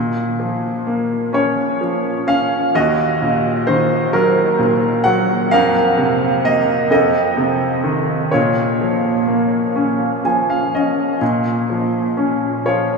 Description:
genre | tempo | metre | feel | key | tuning
classical, lyrical solo piano | 42 BPM (dotted quarters) | 6/8 | rubato | Bb minor | A4 = 441 Hz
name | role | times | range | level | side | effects
bright grand piano | solo | 0.0-13.0 s | Eb2 to Ab5 | -14 LUFS | equal | none
room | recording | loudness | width
wet huge ambient reverb, RT60 7.3 s | in a vast, echoing space, studio reverb | -14 LUFS | side -4 dB against mid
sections
0.0-11.2 A section; 11.2-13.0 A section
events
grand piano fill 9.8-11.2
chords
0.0 Bbm; 2.7 Ebm; 5.5 Fsus4; 6.9 F7; 8.3 Bbm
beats
1.33 | 2.73 4.11 | 5.50 6.90 | 8.31 9.75 | 11.21 12.65

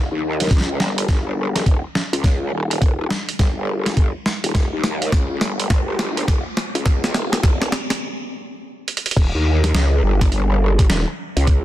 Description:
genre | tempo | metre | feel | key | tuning
glitch hop | 104 BPM | 4/4 | swing 63% on 16ths | unclear | A4 = 440 Hz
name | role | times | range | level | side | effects
growl bass | bass | 0.0-11.6 s | Eb1 to Eb2 | -20 LUFS | equal | chorus, high-pass filter
boom bap sampler-style drum kit | drums | 0.4-11.6 s | crash cymbal, hi-hat, snare drum | -23 LUFS | equal | none
electronic kick drum | drums | 0.5-11.6 s | none | -16 LUFS | equal | none
room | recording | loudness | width
light reverb, digital ambience | dense, heavily limited modern master | -17 LUFS | side -14 dB against mid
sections
0.0-9.2 A section; 9.2-11.6 B section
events
build-up 0.0-9.2; drum fill 0.0-8.0, 8.9; stop 8.0-9.2; drop 9.2-11.6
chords
none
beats
0.51 1.09 1.66 | 2.24 2.82 3.40 3.97 | 4.55 5.13 5.70 6.28 | 6.86 7.43 8.01 8.59 | 9.16 9.74 10.32 10.89 | 11.47

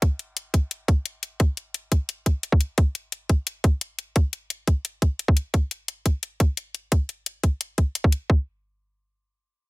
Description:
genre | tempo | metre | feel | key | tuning
liquid drum and bass | 174 BPM | 4/4 | straight | none | none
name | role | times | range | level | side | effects
electronic hi-hat | drums | 0.0-8.2 s | none | -28 LUFS | left 4 dB | overdrive
electronic kick drum | drums | 0.0-8.4 s | none | -19 LUFS | equal | overdrive
room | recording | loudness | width
little or no reverb | faint mains hum | -22 LUFS | side -22 dB against mid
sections
0.0-8.3 A section; 8.3-9.7 B section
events
none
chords
none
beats
| 0.02 0.36 0.71 1.05 | 1.40 1.74 2.09 2.43 | 2.78 3.12 3.47 3.81 | 4.16 4.50 4.85 5.19 | 5.54 5.88 6.23 6.57 | 6.92 7.26 7.61 7.95 | 8.29

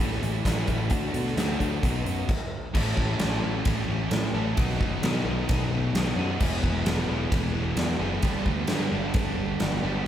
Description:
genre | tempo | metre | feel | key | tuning
classic rock | 131 BPM | 4/4 | straight | unclear | A4 = 441 Hz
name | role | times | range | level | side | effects
string machine, cellos | sustained chords | 0.0-2.3 s | A3 to B4 | -39 LUFS | equal | none
biting overdriven guitar | riff | 0.0-10.1 s | E2 to A4 | -32 LUFS | right 8 dB | none
crunchy overdriven guitar | riff | 0.0-10.1 s | G2 to E4 | -32 LUFS | left 7 dB | none
picked electric bass | bass | 0.0-10.0 s | E1 to B2 | -30 LUFS | equal | none
huge arena drum kit | drums | 0.1-9.7 s | crash cymbal, hi-hat, kick drum, ride cymbal, snare drum | -27 LUFS | equal | none
distorted electric guitar | riff | 2.7-10.1 s | G2 to E4 | -35 LUFS | right 1 dB | none
room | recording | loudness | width
light reverb | band playing live in one room | -24 LUFS | side -10 dB against mid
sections
0.0-2.8 A section; 2.8-10.1 B section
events
stop 2.3-2.8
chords
0.0 A; 0.9 D; 1.8 B; 2.8 A; 4.6 B; 6.4 E; 8.2 G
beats
0.00 0.46 | 0.92 1.38 1.83 2.29 | 2.75 3.21 3.67 4.12 | 4.58 5.04 5.49 5.95 | 6.41 6.86 7.32 7.78 | 8.23 8.69 9.14 9.60 | 10.06

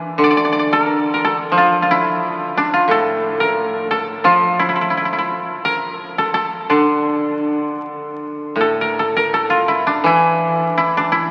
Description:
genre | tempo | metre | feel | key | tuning
japanese traditional, Japanese chamber music | 76-92 BPM | 4/4 | rubato | D hirajoshi | A4 = 444 Hz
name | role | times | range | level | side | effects
koto | melody | 0.0-11.3 s | D4 to D5 | -20 LUFS | equal | none
koto | accompaniment | 0.0-11.3 s | A2 to F3 | -21 LUFS | equal | none
room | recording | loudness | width
wet cathedral reverb, RT60 6.7 s | very old 78 rpm record, vinyl crackle | -17 LUFS | mono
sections
0.0-8.6 A section; 8.6-11.3 B section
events
none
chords
none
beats
| 0.20 0.87 1.53 2.20 | 2.88 3.57 4.26 4.95 | 5.65 6.36 7.08 7.83 | 8.59 9.32 10.04 10.76

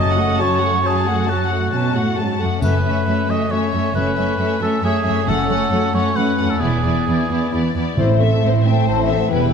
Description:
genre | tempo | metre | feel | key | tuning
cinematic, heroic adventure film score | 135 BPM | 3/4 | straight | F# minor | A4 = 440 Hz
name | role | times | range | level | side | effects
warm symphonic violin section | melody | 0.0-9.5 s | B4 to A5 | -26 LUFS | left 5 dB | none
warm oboe | second line | 0.0-7.8 s | F#4 to D#5 | -22 LUFS | right 2 dB | none
warm studio violin section | second line | 0.0-9.5 s | C#4 to E5 | -26 LUFS | left 4 dB | none
dark symphonic viola section | accompaniment | 0.0-9.5 s | F#3 to E4 | -22 LUFS | equal | none
concert harp | arpeggios | 0.0-9.5 s | E2 to D5 | -26 LUFS | left 11 dB | none
rich studio cello section | bass | 0.0-9.5 s | E2 to B2 | -23 LUFS | right 4 dB | none
warm symphonic double bass section | bass | 0.0-0.4, 2.6-9.5 s | E1 to A1 | -22 LUFS | right 5 dB | none
timpani | percussion | 0.0-0.6, 2.6-3.2, 8.0-8.6 s | F#2 to A2 | -24 LUFS | equal | none
triangle | percussion | 2.6-3.5 s | none | -45 LUFS | left 4 dB | none
mellow hollow large flute ensemble | second line | 8.0-9.5 s | E5 to A5 | -22 LUFS | left 5 dB | none
room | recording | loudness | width
moderate scoring stage reverb, RT60 1.9 s | dark, warm production | -16 LUFS | side -6 dB against mid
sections
0.0-8.0 A section; 8.0-9.5 B section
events
none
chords
0.0 F#m; 2.6 Aadd9/F#; 5.3 F#m; 6.6 E7; 8.0 Am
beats
0.39 0.83 | 1.28 1.73 2.18 | 2.62 3.07 3.51 | 3.95 4.39 4.83 | 5.27 5.71 6.15 | 6.61 7.07 7.53 | 7.98 8.43 8.88 | 9.32

